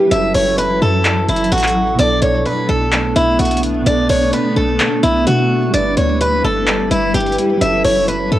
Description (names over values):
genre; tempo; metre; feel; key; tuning
hip hop, trap; 128 BPM; 4/4; half-time; B minor; A4 = 440 Hz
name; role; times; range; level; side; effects
soft electric-piano-like synth keys; accompaniment; 0.0-8.4 s; B2 to B4; -22 LUFS; right 5 dB; chorus, cassette tape
granular cloud pad; sustained chords; 0.0-8.4 s; F#3 to B4; -21 LUFS; left 1 dB; built-in reverb, cassette tape
picked swing-style acoustic guitar; melody; 0.1-8.4 s; E4 to E5; -16 LUFS; equal; none
short 808-style bass; bass; 0.1-8.4 s; F#1 to B2; -19 LUFS; equal; none
booming analog drum machine; drums; 0.1-8.2 s; handclaps, hi-hat; -21 LUFS; equal; cassette tape
room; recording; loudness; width
digital ambience; home recording on cassette; -12 LUFS; side -13 dB against mid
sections
0.0-2.0 A section; 2.0-8.4 A section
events
none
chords
0.1 F#m7; 2.0 Bm7; 5.7 G6; 7.6 F#m7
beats
| 0.11 0.58 1.05 1.52 | 1.99 2.46 2.92 3.39 | 3.86 4.33 4.80 5.27 | 5.74 6.21 6.67 7.14 | 7.61 8.08